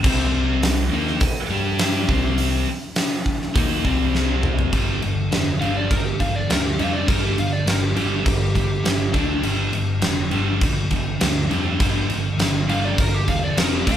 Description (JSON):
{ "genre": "hard rock", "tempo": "102 BPM", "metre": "4/4", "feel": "straight", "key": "unclear", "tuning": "A4 = 438 Hz", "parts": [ { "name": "crunchy overdriven guitar", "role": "riff", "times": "0.0-14.0 s", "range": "F2 to G4", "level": "-26 LUFS", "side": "left 5 dB", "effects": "none" }, { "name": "scooped high-gain guitar", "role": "riff", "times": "0.0-14.0 s", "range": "F2 to G4", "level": "-26 LUFS", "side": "right 4 dB", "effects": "distortion" }, { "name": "picked electric bass", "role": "bass", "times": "0.0-14.0 s", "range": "E1 to G2", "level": "-25 LUFS", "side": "equal", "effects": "none" }, { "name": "huge arena drum kit", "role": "drums", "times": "0.0-14.0 s", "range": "crash cymbal, hi-hat, kick drum, snare drum, toms", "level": "-22 LUFS", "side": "equal", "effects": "none" }, { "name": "lead guitar through a small cranked amp", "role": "melody", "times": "5.6-9.1, 12.7-14.0 s", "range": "G4 to F5", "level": "-27 LUFS", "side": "right 2 dB", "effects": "overdrive" } ], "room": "moderate large studio reverb, RT60 0.8 s", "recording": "band playing live in one room", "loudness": "-18 LUFS", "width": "side -10 dB against mid", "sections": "0.0-4.7 A section; 4.7-14.0 B section", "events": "drum fill 4.1-4.7; lead electric guitar solo 4.7-14.0", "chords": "0.0 C5; 1.5 G5; 2.1 C5; 4.7 G5; 9.1 D5; 9.4 G5; 13.6 F5" }